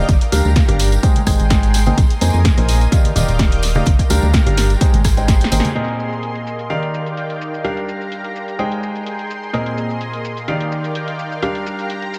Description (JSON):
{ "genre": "piano house", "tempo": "127 BPM", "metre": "4/4", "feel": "swing 53% on 16ths", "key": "Bb mixolydian", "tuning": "A4 = 440 Hz", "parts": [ { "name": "analog string pad", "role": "sustained chords", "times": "0.0-12.2 s", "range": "Bb3 to G6", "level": "-31 LUFS", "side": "equal", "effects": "ensemble chorus, sidechain pumping" }, { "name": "clear grand piano", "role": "riff", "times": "0.0-12.2 s", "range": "Bb2 to Ab5", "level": "-24 LUFS", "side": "equal", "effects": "sidechain pumping, low-pass filter, dub echo" }, { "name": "solid FM bass", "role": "bass", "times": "0.0-5.6 s", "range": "Eb1 to F2", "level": "-18 LUFS", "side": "equal", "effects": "sidechain pumping" }, { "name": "ethereal airy pad", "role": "texture", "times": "0.0-12.2 s", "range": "Ab4 to C6", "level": "-33 LUFS", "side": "equal", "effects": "ensemble chorus, built-in reverb, sidechain pumping" }, { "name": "dusty soul sampler-style drum kit", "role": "drums", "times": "0.1-5.6 s", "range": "none", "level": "barely audible", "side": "none", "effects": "none" }, { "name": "electronic kick drum", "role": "drums", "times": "0.1-5.4 s", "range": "none", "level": "-17 LUFS", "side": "equal", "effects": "overdrive" }, { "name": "punchy analog drum machine", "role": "drums", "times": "0.1-12.2 s", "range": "hi-hat, rim click, shaker, snare drum", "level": "-28 LUFS", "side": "equal", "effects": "low-pass filter on hats, low-pass filter on snare, low-pass filter on perc, dub echo" }, { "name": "tambourine and congas", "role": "percussion", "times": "0.1-5.7 s", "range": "none", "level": "-28 LUFS", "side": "equal", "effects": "none" } ], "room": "light reverb, digital ambience", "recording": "echo-heavy mix", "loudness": "-17 LUFS", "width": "mono", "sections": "0.0-5.8 A section; 5.8-12.2 B section", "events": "drum fill 5.3-5.8; band accent 5.6", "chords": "0.1 Gm7; 1.0 Abmaj7; 2.0 Bb9sus4; 2.9 Ebmaj9; 3.9 Gm7; 4.8 Abmaj7; 5.8 Bb9sus4; 6.7 Ebmaj9; 7.6 Gm7; 8.6 Abmaj7; 9.5 Bb9sus4; 10.5 Ebmaj9; 11.4 Gm7", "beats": "| 0.09 0.56 1.03 1.50 | 1.98 2.45 2.92 3.39 | 3.87 4.34 4.81 5.28 | 5.75 6.23 6.70 7.17 | 7.64 8.12 8.59 9.06 | 9.54 10.01 10.48 10.95 | 11.43 11.90" }